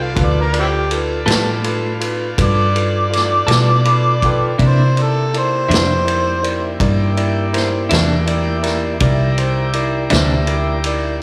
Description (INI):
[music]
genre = slow blues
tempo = 54 BPM (dotted quarters)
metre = 12/8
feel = straight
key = unclear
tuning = A4 = 442 Hz
[part]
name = overdriven harmonica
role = melody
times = 0.0-6.8 s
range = C4 to F5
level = -20 LUFS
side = equal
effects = none
[part]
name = barky tine electric piano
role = accompaniment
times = 0.0-11.1 s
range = E4 to B5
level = -25 LUFS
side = equal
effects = slapback echo
[part]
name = tonewheel organ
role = sustained chords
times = 0.0-11.2 s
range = Bb3 to F5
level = -28 LUFS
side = equal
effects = slow rotary speaker
[part]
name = vintage muted fingered electric bass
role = bass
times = 0.0-11.2 s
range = C2 to C3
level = -20 LUFS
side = equal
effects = none
[part]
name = vintage drum kit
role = drums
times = 0.2-11.0 s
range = kick drum, ride cymbal, snare drum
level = -24 LUFS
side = equal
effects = none
[part]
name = clean electric guitar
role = accompaniment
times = 1.3-10.3 s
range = C3 to A4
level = -25 LUFS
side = equal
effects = tremolo
[sound]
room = moderate scoring stage reverb, RT60 2.1 s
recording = big arena sound, studio reverb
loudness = -16 LUFS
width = mono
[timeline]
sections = 0.0-11.2 A section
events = harmonica solo 0.0-11.2; tine electric piano fill 3.5-4.6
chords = 0.0 G9; 4.6 C9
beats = | 0.18 1.28 2.39 3.50 | 4.60 5.71 6.81 7.92 | 9.02 10.13